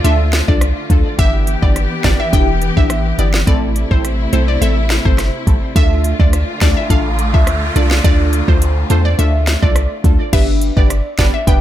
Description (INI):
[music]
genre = dancehall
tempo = 105 BPM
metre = 4/4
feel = straight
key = unclear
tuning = A4 = 440 Hz
[part]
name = glassy wavetable pluck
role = melody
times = 0.0-11.6 s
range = C5 to G5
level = -22 LUFS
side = equal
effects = chorus, diffuse ambient delay
[part]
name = synth brass stab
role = accompaniment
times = 0.0-11.6 s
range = A3 to B4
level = -21 LUFS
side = equal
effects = chorus, phaser
[part]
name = rich studio string section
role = sustained chords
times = 0.0-10.3 s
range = C3 to G4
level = -23 LUFS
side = left 2 dB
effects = sidechain pumping
[part]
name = warm 808-style bass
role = bass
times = 0.0-11.6 s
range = E1 to E2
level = -15 LUFS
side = equal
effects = none
[part]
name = afro-pop drum kit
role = drums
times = 0.0-11.6 s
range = crash cymbal, hi-hat, kick drum, rim click, snare drum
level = -14 LUFS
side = equal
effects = none
[part]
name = noise sweep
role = sound effects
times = 6.3-10.3 s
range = none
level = -28 LUFS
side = right 2 dB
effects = none
[sound]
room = light reverb, digital ambience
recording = none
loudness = -12 LUFS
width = side -12 dB against mid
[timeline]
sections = 0.0-10.3 A section; 10.3-11.6 B section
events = noise sweep 6.3-10.3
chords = 0.0 Dm; 1.2 G6; 3.5 Am; 5.8 Dm; 10.3 G